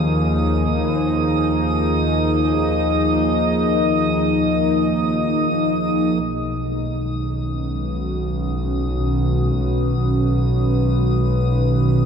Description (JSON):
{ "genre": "ambient", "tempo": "free time", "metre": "none", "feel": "none", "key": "unclear", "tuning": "A4 = 441 Hz", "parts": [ { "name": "warm analog pad", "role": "sustained chords", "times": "0.0-12.1 s", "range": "D#3 to Eb5", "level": "-20 LUFS", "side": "equal", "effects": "chorus" }, { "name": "rich chamber double bass section", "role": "bass", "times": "0.0-12.1 s", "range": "B1 to Eb2", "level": "-21 LUFS", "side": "equal", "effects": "tube saturation" }, { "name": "drifting glass-harmonics texture", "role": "texture", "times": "0.0-12.1 s", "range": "Eb6", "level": "-28 LUFS", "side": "right 4 dB", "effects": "chorus, built-in reverb" } ], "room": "wet cathedral reverb, RT60 5.9 s", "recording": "in a vast, echoing space", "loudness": "-17 LUFS", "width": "side -6 dB against mid", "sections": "0.0-6.2 A section; 6.2-12.1 B section", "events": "fade-in on synth texture 6.2-12.1", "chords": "0.0 Eb5; 6.2 B", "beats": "free time" }